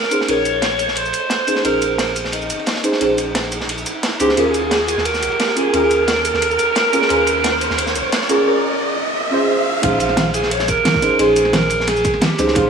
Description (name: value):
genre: liquid drum and bass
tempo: 176 BPM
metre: 4/4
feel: straight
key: unclear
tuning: A4 = 439 Hz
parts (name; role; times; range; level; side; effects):
- growling alto saxophone; melody; 0.0-12.7 s; Eb4 to Db5; -19 LUFS; right 1 dB; dub echo
- deep mellow chord stab; accompaniment; 0.0-12.7 s; Db4 to C5; -19 LUFS; right 1 dB; chorus, digital delay
- crunchy breakbeat drum kit; drums; 0.0-12.6 s; ride cymbal, snare drum; -23 LUFS; right 1 dB; high-pass filter on cymbals, studio ambience, high-pass filter on snare, high-pass filter on room
- riser; sound effects; 1.0-9.8 s; none; -24 LUFS; right 1 dB; none
- pop drum kit; drums; 0.1-12.6 s; cabasa, hi-hat, snare drum; -23 LUFS; equal; studio ambience
- warm sub bass; bass; 0.3-12.7 s; F1 to Eb2; -29 LUFS; equal; tube saturation
- electronic kick drum; drums; 9.8-12.6 s; none; -23 LUFS; equal; studio ambience
room: moderate lush hall reverb, RT60 2.1 s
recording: none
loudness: -14 LUFS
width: side -6 dB against mid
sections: 0.0-9.8 A section; 9.8-12.7 B section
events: build-up 0.0-9.8; riser 1.0-9.8; drop 9.8-12.7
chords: 0.0 Bbm11; 4.4 Eb9sus4; 9.8 Bbm11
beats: | 0.28 0.63 0.97 1.31 | 1.65 1.99 2.33 2.67 | 3.01 3.35 3.69 4.04 | 4.38 4.72 5.06 5.40 | 5.74 6.08 6.42 6.76 | 7.10 7.44 7.79 8.13 | 8.47 8.81 9.15 9.49 | 9.83 10.17 10.51 10.85 | 11.19 11.54 11.88 12.22 | 12.56